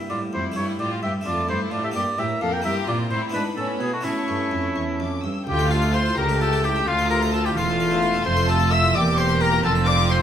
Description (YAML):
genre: classical, baroque-style concerto movement with solo episodes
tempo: 86 BPM (dotted quarters)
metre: 6/8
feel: straight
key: D minor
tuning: A4 = 440 Hz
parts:
  - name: dark chamber viola section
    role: accompaniment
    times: 0.0-10.2 s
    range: G3 to C#4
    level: -29 LUFS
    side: right 1 dB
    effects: none
  - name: harpsichord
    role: accompaniment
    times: 0.0-10.2 s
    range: C#2 to C5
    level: -31 LUFS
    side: equal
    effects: none
  - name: warm oboe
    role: melody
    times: 0.1-10.2 s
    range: E4 to G5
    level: -25 LUFS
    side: left 1 dB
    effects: none
  - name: warm chamber violin section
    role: second line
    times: 0.1-10.2 s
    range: A3 to Bb4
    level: -29 LUFS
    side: left 3 dB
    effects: none
  - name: rich chamber cello section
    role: bass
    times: 0.1-10.2 s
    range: C#2 to B2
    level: -27 LUFS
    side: right 3 dB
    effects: none
  - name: warm chamber violin section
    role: melody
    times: 0.6-10.2 s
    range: F5 to E6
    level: -28 LUFS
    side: left 4 dB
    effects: none
  - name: rich chamber double bass section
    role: bass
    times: 5.5-10.2 s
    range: E1 to D2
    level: -26 LUFS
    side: right 2 dB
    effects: none
room: wet recital hall reverb, RT60 1.5 s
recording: none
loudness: -19 LUFS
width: side -9 dB against mid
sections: 0.0-5.5 A section; 5.5-10.2 B section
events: none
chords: 0.0 Edim; 0.6 A5/G; 1.3 Dm/F; 2.0 Gm; 2.6 Edim/G; 3.3 E7/G#; 4.0 A; 5.5 Dm; 6.2 A7/C#; 6.9 Dm; 8.3 F; 9.0 C13/E; 9.6 F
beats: 0.57 | 1.26 1.96 | 2.65 3.34 | 4.05 4.76 | 5.48 6.18 | 6.88 7.57 | 8.26 8.95 | 9.64